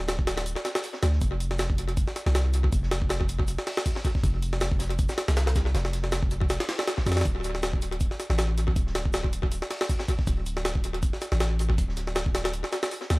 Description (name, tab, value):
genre	drum and bass, jungle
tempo	159 BPM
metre	4/4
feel	swing 55% on 16ths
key	D minor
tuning	A4 = 444 Hz
part	long sustained 808-style bass	bass	0.0-13.2 s	D1 to F2	-27 LUFS	equal	none
part	jungle sampler-style drum kit	drums	0.0-13.2 s	hi-hat, kick drum, snare drum	-26 LUFS	equal	analog delay
part	crunchy breakbeat drum kit	drums	0.1-13.2 s	hi-hat, shaker, snare drum	-42 LUFS	left 1 dB	high-pass filter on hats, high-pass filter on snare, high-pass filter on perc, high-pass filter on room
room	small room reverb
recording	echo-heavy mix, vinyl crackle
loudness	-24 LUFS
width	side -23 dB against mid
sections	0.0-13.2 A section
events	none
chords	none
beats	0.08 0.46 0.84 | 1.22 1.59 1.97 2.35 | 2.72 3.10 3.48 3.86 | 4.23 4.61 4.99 5.37 | 5.74 6.12 6.50 6.88 | 7.25 7.63 8.01 8.38 | 8.76 9.14 9.52 9.89 | 10.27 10.65 11.03 11.40 | 11.78 12.16 12.54 12.91